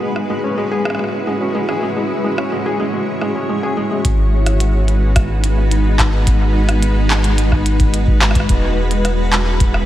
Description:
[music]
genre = IDM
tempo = 108 BPM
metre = 4/4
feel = straight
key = G# minor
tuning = A4 = 437 Hz
[part]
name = granular cloud pad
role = sustained chords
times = 0.0-9.9 s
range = G#3 to C#5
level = -20 LUFS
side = equal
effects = built-in reverb
[part]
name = felt-muted upright piano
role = arpeggios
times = 0.0-4.0 s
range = G#3 to G#4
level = -22 LUFS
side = left 1 dB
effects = analog delay
[part]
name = glitchy drum kit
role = drums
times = 0.2-9.9 s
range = handclaps, hi-hat, rim click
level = -21 LUFS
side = equal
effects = small room ambience, analog delay
[part]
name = warm sub bass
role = bass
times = 4.0-9.9 s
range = E1 to G#1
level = -16 LUFS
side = equal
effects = tube saturation
[part]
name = electronic kick drum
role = drums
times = 4.0-9.7 s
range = none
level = -16 LUFS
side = equal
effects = small room ambience
[sound]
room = moderate lush hall reverb, RT60 2.6 s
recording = dreamy mix soaked in reverb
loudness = -14 LUFS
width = side -13 dB against mid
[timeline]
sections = 0.0-4.0 A section; 4.0-9.9 B section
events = none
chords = 0.0 E69; 4.0 G#m7; 8.5 E69

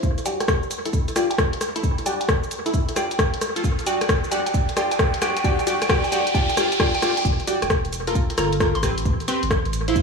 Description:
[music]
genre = UK garage, two-step garage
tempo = 133 BPM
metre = 4/4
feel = swing 66% on 16ths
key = unclear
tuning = A4 = 439 Hz
[part]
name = electronic kick drum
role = drums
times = 0.0-10.0 s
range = none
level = -23 LUFS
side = equal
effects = none
[part]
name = house drum kit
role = drums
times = 0.0-10.0 s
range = cabasa, hi-hat, rim click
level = -25 LUFS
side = left 1 dB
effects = analog delay
[part]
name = riser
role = sound effects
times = 2.0-7.2 s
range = none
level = -31 LUFS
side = equal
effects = none
[part]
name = hollow square pluck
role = melody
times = 0.3-9.5 s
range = G5 to C6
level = -28 LUFS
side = right 2 dB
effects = chorus, analog delay
[part]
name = punchy chord stab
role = stabs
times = 0.3-10.0 s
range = C4 to D5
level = -25 LUFS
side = equal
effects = chorus, analog delay
[part]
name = saturated sub bass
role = bass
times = 7.2-10.0 s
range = D1 to A1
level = -26 LUFS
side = right 1 dB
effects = none
[sound]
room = moderate plate reverb, RT60 1.8 s, digital ambience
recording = echo-heavy mix, studio reverb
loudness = -19 LUFS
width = side -5 dB against mid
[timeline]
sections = 0.0-7.2 A section; 7.2-10.0 B section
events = build-up 0.0-7.2; filter sweep on synth stab 0.0-7.2; filter sweep on synth pluck 0.0-7.2; riser 2.0-7.2; drop 7.2-10.0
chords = 0.0 Em9; 0.9 G5; 1.6 A5; 2.7 Dm; 3.6 Dadd11/F#; 4.5 G5; 5.2 Dadd11/F#; 6.3 Dm; 7.2 Em9; 8.2 Gm9; 8.8 Am9

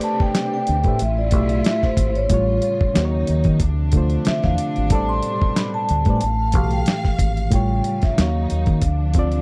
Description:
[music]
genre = R&B, neo-soul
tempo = 92 BPM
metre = 4/4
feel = swing 53% on 16ths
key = A minor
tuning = A4 = 442 Hz
[part]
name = vibraphone with soft mallets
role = melody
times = 0.0-9.4 s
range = C5 to C6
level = -27 LUFS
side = equal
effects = none
[part]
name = reed electric piano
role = accompaniment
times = 0.0-9.4 s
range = A2 to F5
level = -26 LUFS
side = equal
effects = overdrive
[part]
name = dark studio string section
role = sustained chords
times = 0.0-9.4 s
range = B2 to F5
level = -32 LUFS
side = equal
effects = none
[part]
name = dusty soul sampler-style drum kit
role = drums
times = 0.0-9.4 s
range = hi-hat, kick drum, snare drum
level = -22 LUFS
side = equal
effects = none
[part]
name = deep dub fingered electric bass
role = bass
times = 0.7-9.4 s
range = G#1 to D#3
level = -23 LUFS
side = equal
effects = none
[sound]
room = little or no reverb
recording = dry, close 1970s-style studio recording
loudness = -19 LUFS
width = mono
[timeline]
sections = 0.0-9.4 A section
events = none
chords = 0.0 Am11; 1.0 Fmaj7/A; 2.3 A7b13; 3.0 D#m7; 3.6 Dm7; 4.9 Am11; 6.2 Fmaj7/A; 7.5 A7b13; 8.2 D#m7; 8.8 Dm7

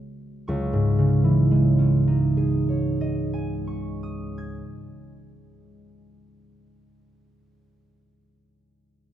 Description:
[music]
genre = classical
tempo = 25 BPM (dotted quarters)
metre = 6/8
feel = rubato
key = C# minor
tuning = A4 = 441 Hz
[part]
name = concert harp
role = accompaniment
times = 0.5-6.7 s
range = C#2 to G#6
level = -21 LUFS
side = right 1 dB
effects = none
[sound]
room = wet recital hall reverb, RT60 1.8 s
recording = none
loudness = -20 LUFS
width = side -12 dB against mid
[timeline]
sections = 0.5-5.2 A section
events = none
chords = 0.5 C#madd9

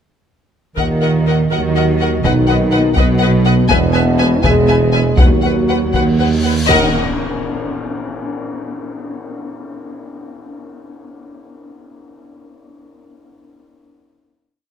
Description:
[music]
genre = cinematic, epic orchestral film score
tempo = 81 BPM (dotted quarters)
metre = 6/8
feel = straight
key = Eb phrygian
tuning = A4 = 444 Hz
[part]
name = warm symphonic violin section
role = melody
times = 0.8-7.0 s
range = Gb5 to G#5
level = -23 LUFS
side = left 6 dB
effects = none
[part]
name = warm symphonic violin section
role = second line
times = 0.8-7.0 s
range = Eb5 to F#5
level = -23 LUFS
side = left 4 dB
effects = none
[part]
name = warm symphonic viola section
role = accompaniment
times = 0.8-7.0 s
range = Bb4 to B4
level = -24 LUFS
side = left 1 dB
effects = none
[part]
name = mellow French horn section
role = sustained chords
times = 0.8-6.9 s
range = Bb3 to G#4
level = -20 LUFS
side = left 6 dB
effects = none
[part]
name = mellow trombone section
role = sustained chords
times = 0.8-6.9 s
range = Bb2 to G#3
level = -24 LUFS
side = right 5 dB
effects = none
[part]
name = dark symphonic cello section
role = bass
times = 0.8-7.0 s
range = D#2 to Eb3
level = -19 LUFS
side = right 3 dB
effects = none
[part]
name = mellow tuba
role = bass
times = 0.8-6.9 s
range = E1 to D#2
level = -19 LUFS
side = right 4 dB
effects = none
[part]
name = warm symphonic double bass section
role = bass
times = 0.8-7.0 s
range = E1 to Eb2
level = -20 LUFS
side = right 3 dB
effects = none
[part]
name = taiko ensemble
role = drums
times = 0.8-6.4 s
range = none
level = -17 LUFS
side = left 1 dB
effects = none
[part]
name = cymbal swell and tam-tam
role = percussion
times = 3.7-8.6 s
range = none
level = -27 LUFS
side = left 3 dB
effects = none
[part]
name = cymbal swell and impact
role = sound effects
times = 6.2-8.2 s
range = none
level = -27 LUFS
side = equal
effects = none
[sound]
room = light reverb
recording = close, detailed microphones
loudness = -12 LUFS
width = side -8 dB against mid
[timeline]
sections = 0.8-6.7 theme; 6.7-8.2 final chord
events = cymbal swell 6.2-6.7; band accent 6.7-7.2; impact 6.7-8.2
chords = 0.8 Ebm; 2.2 B; 3.7 E; 5.2 B/D#; 6.7 Eb5

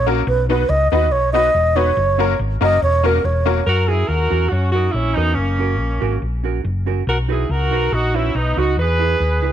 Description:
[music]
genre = ska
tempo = 141 BPM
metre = 4/4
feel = straight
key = F# mixolydian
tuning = A4 = 440 Hz
[part]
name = bright reedy wooden-headed alto flute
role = melody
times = 0.0-3.7 s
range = A#4 to D#5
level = -17 LUFS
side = right 1 dB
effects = none
[part]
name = hollow-body short-scale fingered electric bass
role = bass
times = 0.0-9.5 s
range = E1 to F#2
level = -19 LUFS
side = equal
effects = none
[part]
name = hollow-body jazz guitar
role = accompaniment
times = 0.1-9.5 s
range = C#4 to B4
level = -26 LUFS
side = right 13 dB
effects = none
[part]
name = honky-tonk upright piano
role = stabs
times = 0.1-3.6 s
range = A#3 to B4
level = -23 LUFS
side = left 13 dB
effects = none
[part]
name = warm horn section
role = melody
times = 3.7-9.5 s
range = A#3 to B4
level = -20 LUFS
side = right 1 dB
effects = none
[sound]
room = light reverb, small room ambience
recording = 1960s-style stereo with parts hard left and right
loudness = -15 LUFS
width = side -10 dB against mid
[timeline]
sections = 0.0-3.7 A section; 3.7-9.5 B section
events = alto flute solo 0.0-3.7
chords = 0.3 B; 2.0 F#; 7.1 B; 8.8 E

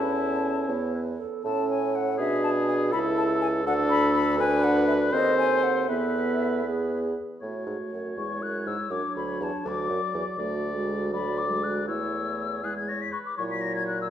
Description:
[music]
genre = quick classical-period movement for wind quintet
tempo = 80 BPM (dotted quarters)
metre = 6/8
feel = straight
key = A major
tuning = A4 = 439 Hz
[part]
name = mellow hollow silver concert flute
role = melody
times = 0.0-14.1 s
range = D#5 to B6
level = -30 LUFS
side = left 6 dB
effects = none
[part]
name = warm oboe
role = second line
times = 0.0-14.1 s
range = E4 to D5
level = -31 LUFS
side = left 1 dB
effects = none
[part]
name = dark clarinet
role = accompaniment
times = 0.0-14.1 s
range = D4 to C#5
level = -32 LUFS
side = right 7 dB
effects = none
[part]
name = warm French horn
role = accompaniment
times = 0.0-14.1 s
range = F#3 to E4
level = -30 LUFS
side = equal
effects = none
[part]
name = warm bassoon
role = bass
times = 0.0-14.1 s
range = C#2 to B2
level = -30 LUFS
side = right 2 dB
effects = none
[sound]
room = wet recital hall reverb, RT60 1.6 s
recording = dark, warm production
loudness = -24 LUFS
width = side -10 dB against mid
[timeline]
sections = 0.0-7.4 A section; 7.4-14.1 B section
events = none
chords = 0.0 A/E; 0.7 E5; 1.4 A; 2.2 Bm6; 2.9 A/C#; 3.7 D5; 4.4 Bm/D; 5.1 D#dim7; 5.9 Esus4; 6.7 E; 7.4 A; 8.9 D; 11.1 Bm6/D; 11.9 A/E; 12.6 E; 13.4 F#7/A#

